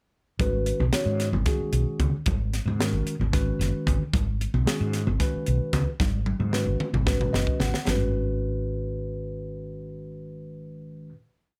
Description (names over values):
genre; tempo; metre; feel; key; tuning
electric jazz fusion; 225 BPM (eighths); 7/8; straight; G# minor; A4 = 442 Hz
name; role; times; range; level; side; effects
mellow tine electric piano; accompaniment; 0.4-11.2 s; D#3 to F#5; -33 LUFS; equal; phaser
woody fretless electric bass; bass; 0.4-11.1 s; F#1 to G#2; -29 LUFS; equal; none
crisp fusion drum kit; drums; 0.4-8.0 s; hi-hat, kick drum, snare drum, toms; -30 LUFS; equal; none
congas; percussion; 0.4-8.1 s; none; -34 LUFS; equal; none
room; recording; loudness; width
light reverb; none; -26 LUFS; mono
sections
0.4-7.9 groove; 7.9-11.6 final chord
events
drum fill 6.0-7.9; tine electric piano fill 7.1-7.9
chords
0.4 G#m11; 7.9 G#m7